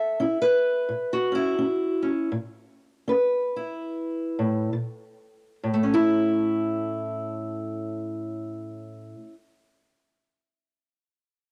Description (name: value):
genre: acoustic country blues, solo or duo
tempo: 64-88 BPM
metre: 4/4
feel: swing 60% on 8ths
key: A major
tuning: A4 = 440 Hz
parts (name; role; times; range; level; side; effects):
- fingerpicked steel-string acoustic guitar; solo; 0.0-9.3 s; A2 to E5; -26 LUFS; equal; cassette tape
room: moderate spring reverb, RT60 1.9 s, small room ambience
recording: home recording on cassette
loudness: -26 LUFS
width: mono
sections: 0.0-5.6 A section; 5.6-9.4 B section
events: slowing down 0.0-5.6; stop 2.3-4.7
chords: 0.0 A; 4.7 N.C.; 5.6 A